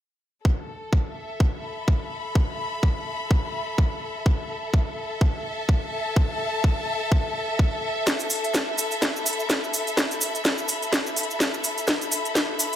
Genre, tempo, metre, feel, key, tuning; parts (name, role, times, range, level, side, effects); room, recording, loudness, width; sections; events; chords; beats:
bass house; 126 BPM; 4/4; swing 57% on 16ths; A4 = 440 Hz
electronic kick drum; drums; 0.5-12.5 s; -23 LUFS; equal; high-pass filter on kick, high-pass filter on room
rich chamber string section; texture; 0.5-12.8 s; A4 to B5; -28 LUFS; left 1 dB; sidechain pumping
garage drum kit; drums; 8.1-12.8 s; hi-hat, snare drum; -24 LUFS; equal
cabasa; percussion; 8.1-12.8 s; -29 LUFS; right 2 dB
light reverb; -22 LUFS; side -11 dB against mid
0.5-8.1 A section; 8.1-12.8 B section
build-up 8.1-12.8; drum fill 8.1-12.8
0.5 A5
| 0.45 0.93 1.40 1.88 | 2.35 2.83 3.31 3.78 | 4.26 4.74 5.21 5.69 | 6.16 6.64 7.12 7.59 | 8.07 8.54 9.02 9.50 | 9.97 10.45 10.93 11.40 | 11.88 12.36